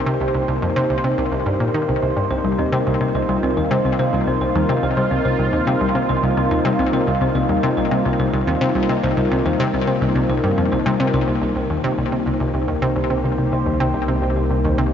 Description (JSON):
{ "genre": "ambient, sequencer-driven space music", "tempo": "107 BPM", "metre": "4/4", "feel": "straight", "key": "C minor", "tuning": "A4 = 440 Hz", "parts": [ { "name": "sweeping resonant pad", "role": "sustained chords", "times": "0.0-14.9 s", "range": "Bb3 to C5", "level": "-21 LUFS", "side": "equal", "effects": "chorus" }, { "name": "analog pluck", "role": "riff", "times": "0.1-14.8 s", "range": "C2 to Eb3", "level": "-20 LUFS", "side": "left 1 dB", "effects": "chorus, ping-pong delay" }, { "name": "thumb-piano-like synth pluck", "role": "arpeggios", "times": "2.3-14.8 s", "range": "G3 to C5", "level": "-24 LUFS", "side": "left 1 dB", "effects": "chorus, auto-pan, ping-pong delay" }, { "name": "fat analog bass", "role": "bass", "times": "11.3-14.9 s", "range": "C2", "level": "-25 LUFS", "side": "equal", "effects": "none" } ], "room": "wet huge ambient reverb, RT60 7.6 s", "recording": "worn, warbling old tape, cassette tape, warbly pitch drift, nothing above 7.6 kHz", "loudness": "-17 LUFS", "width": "side -8 dB against mid", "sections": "0.0-11.3 A section; 11.3-14.9 B section", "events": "none", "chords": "0.0 Cm7", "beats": "| 0.06 0.62 1.19 1.75 | 2.31 2.87 3.43 3.99 | 4.55 5.11 5.67 6.23 | 6.79 7.35 7.91 8.47 | 9.04 9.60 10.16 10.72 | 11.28 11.84 12.40 12.96 | 13.52 14.08 14.64" }